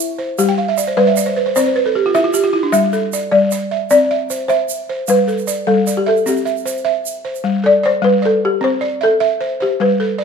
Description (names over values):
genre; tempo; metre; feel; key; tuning
west african traditional, West African string and xylophone music; 102 BPM (dotted quarters); 12/8; straight; G mixolydian; A4 = 440 Hz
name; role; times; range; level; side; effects
balafon; melody; 0.0-10.2 s; E4 to E5; -15 LUFS; left 2 dB; none
balafon; arpeggios; 0.0-10.2 s; G3 to G5; -17 LUFS; right 2 dB; none
egg shaker; percussion; 0.0-7.4 s; none; -26 LUFS; right 10 dB; none
room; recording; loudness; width
moderate recital hall reverb, RT60 1.4 s; minimal, uncompressed stereo recording; -13 LUFS; side -6 dB against mid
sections
0.0-7.4 A section; 7.4-10.2 B section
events
balafon fill 0.5-2.7; balafon solo 7.4-10.2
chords
0.4 G; 1.6 C; 2.7 G5; 3.9 C; 5.1 G; 6.3 C; 7.4 G5; 8.6 C